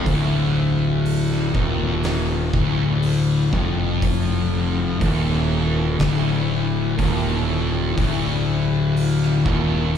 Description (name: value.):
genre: stoner and doom metal.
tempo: 61 BPM.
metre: 4/4.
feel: straight.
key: D minor.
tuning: A4 = 440 Hz.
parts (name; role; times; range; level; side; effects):
string machine, violas; sustained chords; 0.0-10.0 s; D3 to E4; -34 LUFS; left 1 dB; none.
thick fuzz guitar; riff; 0.0-10.0 s; D2 to F2; -23 LUFS; left 12 dB; distortion.
thick fuzz guitar; riff; 0.0-10.0 s; D2 to F2; -23 LUFS; right 5 dB; distortion.
fuzz fingered electric bass; bass; 0.0-10.0 s; D1 to F1; -24 LUFS; equal; overdrive.
oversized low-tuned drum kit; drums; 0.1-10.0 s; hi-hat, kick drum, snare drum; -27 LUFS; equal; none.
room: small room ambience.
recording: live gig heard through the venue's PA, club reverb.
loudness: -18 LUFS.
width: side -8 dB against mid.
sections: 0.1-10.0 A section.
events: none.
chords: 0.1 Dm.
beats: | 0.07 1.05 2.04 3.03 | 4.02 5.01 6.00 6.99 | 7.98 8.96 9.95.